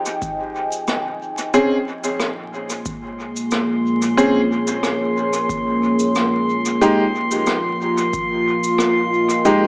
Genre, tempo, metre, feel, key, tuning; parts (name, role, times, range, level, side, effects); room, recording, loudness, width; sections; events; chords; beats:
ambient dub; 91 BPM; 4/4; straight; Bb dorian; A4 = 440 Hz
deep dark ambient pad; sustained chords; 0.0-9.7 s; Bb3 to Ab5; -20 LUFS; equal; chorus, built-in reverb
cabasa and rim click; drums; 0.1-9.6 s; -26 LUFS; equal; dub echo
electronic kick drum; drums; 0.2-8.3 s; -33 LUFS; equal; overdrive
clear upright piano; stabs; 1.5-9.7 s; Ab3 to Ab4; -18 LUFS; equal; dub echo
drifting glass-harmonics texture; texture; 2.8-9.7 s; C6; -23 LUFS; equal; chorus, built-in reverb
moderate spring reverb, RT60 1.6 s, small room ambience; echo-heavy mix, vinyl crackle, small speaker sound; -16 LUFS; side -36 dB against mid
0.0-9.7 A section
0.0 Fm9; 1.5 Bbm9; 6.8 Fm9
0.22 0.88 | 1.54 2.20 2.86 3.52 | 4.18 4.84 5.50 6.15 | 6.81 7.47 8.13 8.79 | 9.45